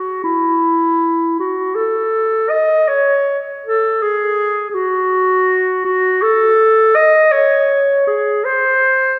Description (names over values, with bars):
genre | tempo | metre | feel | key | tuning
classical, free, expressive piece for unaccompanied clarinet | 54 BPM (dotted quarters) | 6/8 | rubato | unclear | A4 = 442 Hz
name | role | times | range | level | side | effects
warm clarinet | solo | 0.0-9.2 s | E4 to D#5 | -15 LUFS | equal | none
room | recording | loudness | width
wet scoring stage reverb, RT60 1.9 s | heard from further back in the room | -15 LUFS | mono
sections
0.0-9.2 A section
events
none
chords
none